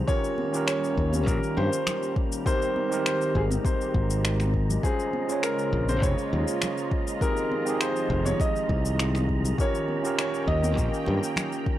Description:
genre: sunset chillout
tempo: 101 BPM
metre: 4/4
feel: straight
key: unclear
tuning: A4 = 440 Hz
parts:
  - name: overdriven tine electric piano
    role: accompaniment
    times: 0.0-11.8 s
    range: C4 to Db5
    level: -30 LUFS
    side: moving between left 3 dB and right 3 dB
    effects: auto-pan, analog delay
  - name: lush unison pad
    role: sustained chords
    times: 0.0-11.8 s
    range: Db3 to G5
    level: -34 LUFS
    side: equal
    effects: chorus
  - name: wind-like tuned noise texture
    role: texture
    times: 0.0-11.8 s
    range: Bb5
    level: -42 LUFS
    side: right 4 dB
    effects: built-in reverb
  - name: warm concert grand piano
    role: melody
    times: 0.1-11.6 s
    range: Ab4 to Eb5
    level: -30 LUFS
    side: right 1 dB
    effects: analog delay
  - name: electronic cabasa and finger snaps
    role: drums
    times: 0.1-11.6 s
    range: none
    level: -32 LUFS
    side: left 1 dB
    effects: overdrive
  - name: electronic kick drum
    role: drums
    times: 0.1-11.8 s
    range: none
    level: -28 LUFS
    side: equal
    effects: overdrive
  - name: congas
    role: percussion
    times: 0.4-11.5 s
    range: none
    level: -36 LUFS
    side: right 1 dB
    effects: none
  - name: modern bright fingered electric bass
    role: bass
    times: 1.0-11.2 s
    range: F1 to G2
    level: -25 LUFS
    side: equal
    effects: tube saturation
room: little or no reverb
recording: dry, gritty hardware recording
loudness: -23 LUFS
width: side -13 dB against mid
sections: 0.0-11.8 A section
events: none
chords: 0.1 Eb7; 2.5 Abmaj7; 4.8 Bbm9; 7.2 Fm7; 9.6 Eb7

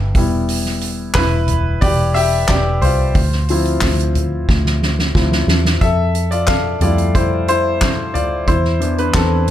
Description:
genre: piano-driven pop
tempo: 90 BPM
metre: 4/4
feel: straight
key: unclear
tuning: A4 = 440 Hz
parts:
  - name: clear concert grand piano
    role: accompaniment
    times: 0.0-9.5 s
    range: E3 to F5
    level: -18 LUFS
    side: left 2 dB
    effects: none
  - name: vintage muted fingered electric bass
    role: bass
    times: 0.0-9.5 s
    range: E1 to F2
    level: -18 LUFS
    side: equal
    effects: none
  - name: soft-mallet drum kit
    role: drums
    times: 0.1-9.5 s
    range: handclaps, hi-hat, kick drum, snare drum, toms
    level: -18 LUFS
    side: equal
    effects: none
room: studio reverb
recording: none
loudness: -14 LUFS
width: side -11 dB against mid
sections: 0.0-5.8 A section; 5.8-9.5 B section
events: grand piano solo 0.0-5.8, 5.8-9.5; drum fill 4.5-5.8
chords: 0.2 Em; 3.2 Dm7; 5.8 Fmaj7; 8.5 Cmaj7/E

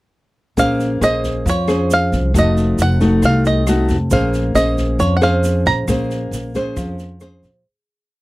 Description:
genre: bossa nova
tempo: 136 BPM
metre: 4/4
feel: straight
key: Bb minor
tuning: A4 = 444 Hz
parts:
  - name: bluegrass banjo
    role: melody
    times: 0.6-7.4 s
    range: Db5 to Bb5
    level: -19 LUFS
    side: right 1 dB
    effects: none
  - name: nylon-string guitar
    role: accompaniment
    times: 0.6-7.6 s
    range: C3 to C5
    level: -18 LUFS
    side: equal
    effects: none
  - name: upright bass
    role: bass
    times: 0.6-7.6 s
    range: F1 to F2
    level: -19 LUFS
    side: equal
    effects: none
  - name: open jazz drum kit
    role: drums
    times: 0.6-7.5 s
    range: kick drum, rim click, snare drum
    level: -26 LUFS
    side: equal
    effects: none
  - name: tube shaker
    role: percussion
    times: 0.6-7.7 s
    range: none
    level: -35 LUFS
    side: right 7 dB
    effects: none
room: little or no reverb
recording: dry, close 1970s-style studio recording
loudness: -14 LUFS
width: side -19 dB against mid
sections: 0.6-7.7 A section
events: fade-out 5.9-7.7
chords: 0.6 Bbm9; 2.3 F7b9; 4.1 Bbm9

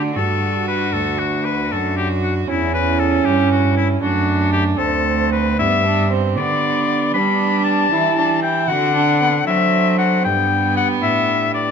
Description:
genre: classical, baroque-style sonata movement with continuo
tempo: 77 BPM (dotted quarters)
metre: 12/8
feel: rubato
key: G major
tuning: A4 = 440 Hz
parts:
  - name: clear oboe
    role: melody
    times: 0.0-11.7 s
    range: E4 to B5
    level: -19 LUFS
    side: left 7 dB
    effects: none
  - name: dark violin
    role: second line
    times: 0.0-11.7 s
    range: B3 to F#4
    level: -22 LUFS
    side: right 7 dB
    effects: none
  - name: pipe organ, foundations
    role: accompaniment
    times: 0.0-11.7 s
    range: D2 to A4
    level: -24 LUFS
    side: equal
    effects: none
  - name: rich cello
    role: bass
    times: 0.0-11.7 s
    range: D2 to G3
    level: -21 LUFS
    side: right 2 dB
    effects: none
room: wet recital hall reverb, RT60 1.5 s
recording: none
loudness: -15 LUFS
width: side -6 dB against mid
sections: 0.0-11.7 A section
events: none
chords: 0.0 D; 2.5 C#dim/E; 4.0 D/F#; 5.6 G; 8.7 D7; 10.2 G

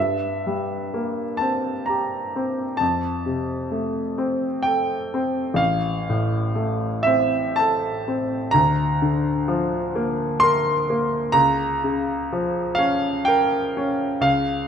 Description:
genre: classical, romantic nocturne for solo piano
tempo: 56-67 BPM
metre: 3/4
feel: rubato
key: F major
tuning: A4 = 440 Hz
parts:
  - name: clear baby grand piano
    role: solo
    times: 0.0-14.7 s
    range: A1 to C6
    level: -20 LUFS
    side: equal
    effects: none
room: moderate recital hall reverb, RT60 1.4 s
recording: none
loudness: -20 LUFS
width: side -8 dB against mid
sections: 0.0-14.7 A section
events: none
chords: 0.0 C7/G; 2.8 F; 5.6 F/A; 8.5 Bb/D; 11.4 Bbm/Db

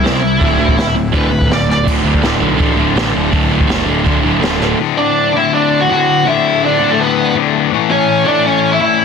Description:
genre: punk rock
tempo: 165 BPM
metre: 4/4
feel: straight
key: D major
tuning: A4 = 440 Hz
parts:
  - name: high-gain lead guitar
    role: melody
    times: 0.0-1.9, 5.0-9.0 s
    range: A3 to F#5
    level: -14 LUFS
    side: right 2 dB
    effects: distortion, tape echo
  - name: crunchy overdriven guitar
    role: riff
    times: 0.0-4.8 s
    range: D2 to C4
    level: -17 LUFS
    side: right 11 dB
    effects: none
  - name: distorted electric guitar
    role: riff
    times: 0.0-9.0 s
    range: D2 to C4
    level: -16 LUFS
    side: left 14 dB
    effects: distortion
  - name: fuzz picked electric bass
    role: bass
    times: 0.0-4.7 s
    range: D1 to D2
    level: -19 LUFS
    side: equal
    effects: overdrive
  - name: jazz brush drum kit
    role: drums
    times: 0.0-4.7 s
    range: crash cymbal, hi-hat, kick drum, snare drum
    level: -17 LUFS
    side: equal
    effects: soft clipping on snare
room: little or no reverb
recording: dense, heavily limited modern master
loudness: -11 LUFS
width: side -6 dB against mid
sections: 0.0-1.9 A section; 1.9-4.8 B section; 4.8-9.0 C section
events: lead electric guitar solo 0.0-1.9; drum fill 1.7, 4.6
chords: 0.4 D5; 4.8 D; 7.7 A

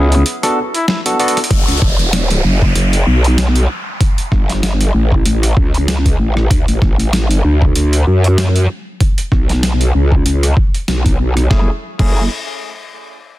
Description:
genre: glitch hop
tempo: 96 BPM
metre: 4/4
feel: swing 56% on 16ths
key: F# minor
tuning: A4 = 440 Hz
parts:
  - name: barky tine electric piano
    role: stabs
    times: 0.0-1.4, 11.5-12.2 s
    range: A3 to A4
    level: -19 LUFS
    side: equal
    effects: sidechain pumping, ping-pong delay
  - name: growl bass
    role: bass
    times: 0.0-12.3 s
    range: E1 to F#2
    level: -13 LUFS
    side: equal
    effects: chorus, overdrive
  - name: boom bap sampler-style drum kit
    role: drums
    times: 0.1-12.1 s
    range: crash cymbal, hi-hat, rim click, snare drum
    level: -21 LUFS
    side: equal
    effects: overdrive, studio reverb
  - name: warm trumpet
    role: melody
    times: 0.7-1.0 s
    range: E4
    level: -25 LUFS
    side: left 2 dB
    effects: none
  - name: electronic kick drum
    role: drums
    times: 1.5-12.1 s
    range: none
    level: -14 LUFS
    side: equal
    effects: overdrive, studio reverb
  - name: downlifter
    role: sound effects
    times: 1.5-6.5 s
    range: none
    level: -22 LUFS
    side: equal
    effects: none
room: digital ambience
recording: dense, heavily limited modern master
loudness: -11 LUFS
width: side -16 dB against mid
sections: 0.0-1.5 A section; 1.5-11.5 B section; 11.5-13.4 C section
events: drop 0.0-1.5; break 0.3-1.5; drum fill 1.2-1.5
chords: 0.3 Bm7; 1.5 F#5; 4.0 A7; 6.5 D; 9.0 Bsus2; 11.5 F#m7

